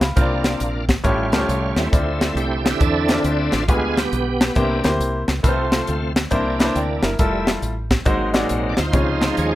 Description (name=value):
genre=uptempo gospel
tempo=137 BPM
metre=4/4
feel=swing 64% on 8ths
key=F major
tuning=A4 = 440 Hz
part: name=bright grand piano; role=accompaniment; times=0.0-9.6 s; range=Ab2 to B5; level=-23 LUFS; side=left 1 dB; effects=none
part: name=deep dub fingered electric bass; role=bass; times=0.0-9.6 s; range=F1 to E2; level=-24 LUFS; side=equal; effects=none
part: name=crisp fusion drum kit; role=drums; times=0.0-9.5 s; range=hi-hat, kick drum, snare drum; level=-20 LUFS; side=equal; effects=none
part: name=bright tonewheel organ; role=sustained chords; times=0.2-9.6 s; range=D3 to E5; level=-23 LUFS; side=right 2 dB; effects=fast rotary speaker, overdrive, chorus vibrato
part: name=muted French horn section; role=sustained chords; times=8.9-9.6 s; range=F3 to F4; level=-27 LUFS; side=equal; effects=none
room=light reverb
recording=rough home demo mix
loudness=-17 LUFS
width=side -15 dB against mid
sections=0.0-9.6 A section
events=tonewheel organ solo 0.0-9.6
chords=0.2 C9sus4; 1.0 A7alt; 1.9 Dm9; 3.7 G7b9/D; 4.6 C7; 5.4 F/C; 6.3 C9; 7.2 Fmaj9; 8.1 Ab7; 8.9 Dbmaj9